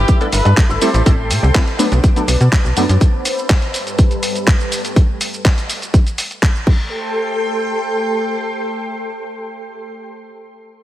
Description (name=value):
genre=filtered disco house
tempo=123 BPM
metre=4/4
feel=straight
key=A minor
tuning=A4 = 445 Hz
part: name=brilliant horn section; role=melody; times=0.0-0.5 s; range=G4 to B4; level=-24 LUFS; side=left 1 dB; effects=sidechain pumping, low-pass filter, dub echo
part: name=string machine, full ensemble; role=sustained chords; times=0.0-9.9 s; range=G3 to E6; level=-22 LUFS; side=equal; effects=ensemble chorus, sidechain pumping, low-pass filter
part: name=electric guitar with an envelope filter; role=riff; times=0.0-1.0 s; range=E4 to C5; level=-24 LUFS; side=left 2 dB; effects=vintage 12-bit sampler grit, sidechain pumping, low-pass filter
part: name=slap-like FM bass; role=bass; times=0.0-3.0 s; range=G1 to B2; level=-14 LUFS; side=equal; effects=sidechain pumping, low-pass filter
part: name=dusty soul sampler-style drum kit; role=drums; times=0.1-6.8 s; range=crash cymbal, handclaps, hi-hat, shaker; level=-21 LUFS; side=equal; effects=sidechain pumping on hats, sidechain pumping on cymbals, sidechain pumping on perc
part: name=electronic kick drum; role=drums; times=0.1-6.8 s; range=none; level=-12 LUFS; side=equal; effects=none
part: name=egg shaker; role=percussion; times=0.1-3.0 s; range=none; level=barely audible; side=none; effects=none
part: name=funky polysynth comp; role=accompaniment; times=0.2-2.8 s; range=F#3 to B4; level=-20 LUFS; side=right 1 dB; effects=chorus, phaser, sidechain pumping, low-pass filter
room=moderate echo chamber reverb, RT60 2.1 s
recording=heavily compressed radio sound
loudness=-13 LUFS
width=side -13 dB against mid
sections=0.0-6.9 A section; 6.9-10.8 B section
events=filter sweep 0.0-6.9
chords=0.0 G69; 0.8 Am7; 1.8 Bm7; 3.0 Cmaj7; 3.7 G69; 4.7 Am7; 5.7 N.C.; 6.7 Am7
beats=0.08 0.57 | 1.06 1.55 2.03 2.52 | 3.01 3.50 3.98 4.47 | 4.96 5.45 5.94 6.42 | 6.91 7.40 7.89 8.38 | 8.86 9.35 9.84